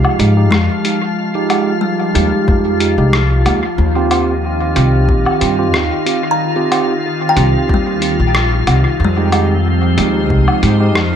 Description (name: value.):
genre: ambient dub.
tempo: 92 BPM.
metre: 4/4.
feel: swing 54% on 16ths.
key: F minor.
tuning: A4 = 440 Hz.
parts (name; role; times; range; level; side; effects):
soft additive organ-like pad; sustained chords; 0.0-11.2 s; Eb3 to Eb5; -18 LUFS; left 1 dB; ensemble chorus, built-in reverb, vintage 12-bit sampler grit.
mellow tine electric piano; stabs; 0.0-11.0 s; Ab3 to G4; -18 LUFS; right 4 dB; auto-pan, dub echo.
upright bass; bass; 0.0-11.1 s; Bb1 to Ab2; -14 LUFS; left 1 dB; none.
lo-fi sampler-style drum kit; drums; 0.0-11.1 s; hi-hat, rim click, woodblock; -20 LUFS; left 2 dB; dub echo.
kalimba; arpeggios; 0.5-11.2 s; G3 to Bb5; -21 LUFS; left 2 dB; dub echo.
electronic kick drum; drums; 2.5-10.4 s; none; -16 LUFS; left 1 dB; overdrive.
room: moderate spring reverb, RT60 2.6 s.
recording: none.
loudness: -11 LUFS.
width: side -8 dB against mid.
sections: 0.0-11.2 A section.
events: none.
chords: 0.0 Fm7; 3.8 Eb69; 9.0 Fm7.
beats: 0.52 | 1.17 1.83 2.48 3.13 | 3.78 4.43 5.09 5.74 | 6.39 7.04 7.70 8.35 | 9.00 9.65 10.30 10.96.